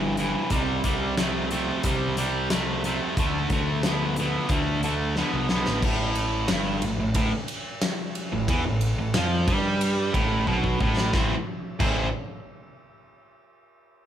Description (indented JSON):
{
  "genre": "classic rock",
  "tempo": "90 BPM",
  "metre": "4/4",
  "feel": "straight",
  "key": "A minor",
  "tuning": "A4 = 439 Hz",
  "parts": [
    { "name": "distorted electric guitar", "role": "riff", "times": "0.0-12.1 s", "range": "G2 to C5", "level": "-26 LUFS", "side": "right 1 dB", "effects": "overdrive" },
    { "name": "fuzz picked electric bass", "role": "bass", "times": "0.0-12.1 s", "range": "G1 to G2", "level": "-28 LUFS", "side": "equal", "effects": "overdrive" },
    { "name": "big rock drum kit", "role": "drums", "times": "0.2-12.0 s", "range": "crash cymbal, hi-hat, kick drum, ride cymbal, snare drum", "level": "-28 LUFS", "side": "left 1 dB", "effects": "none" }
  ],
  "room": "light reverb",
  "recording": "band playing live in one room",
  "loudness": "-22 LUFS",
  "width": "side -10 dB against mid",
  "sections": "0.0-5.8 A section; 5.8-11.1 B section; 11.1-13.8 C section",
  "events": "drum fill 5.2-5.8, 10.5-11.1",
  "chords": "0.0 G5; 0.5 C5; 3.2 D5; 5.8 A5; 11.1 Am",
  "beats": "| 0.51 1.18 1.84 2.51 | 3.17 3.84 4.50 5.17 | 5.83 6.50 7.16 7.83 | 8.49 9.15 9.81 10.48 | 11.14 11.80"
}